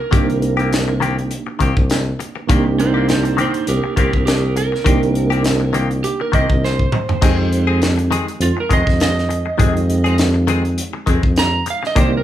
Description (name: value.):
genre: straight-eighth soul blues.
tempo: 101 BPM.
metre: 4/4.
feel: swing 55% on 16ths.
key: unclear.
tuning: A4 = 442 Hz.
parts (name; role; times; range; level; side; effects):
electric slide guitar; second line; 0.0-12.2 s; Eb4 to Bb5; -21 LUFS; right 4 dB; none.
reed electric piano; accompaniment; 0.0-12.2 s; Ab3 to D5; -24 LUFS; right 5 dB; fast tremolo.
direct-recorded clean electric guitar; stabs; 0.0-12.2 s; Eb3 to Ab4; -23 LUFS; left 6 dB; phaser.
warm tuba; bass; 0.1-12.2 s; C2 to F2; -19 LUFS; equal; none.
tight funk drum kit; drums; 0.1-12.1 s; crash cymbal, hi-hat, kick drum, snare drum, toms; -18 LUFS; equal; none.
room: light reverb.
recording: band playing live in one room.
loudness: -14 LUFS.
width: side -12 dB against mid.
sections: 0.0-12.2 A section.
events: electric slide guitar solo 0.0-12.2; drum fill 6.6-7.2.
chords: 0.0 Cm7; 7.2 Fm7.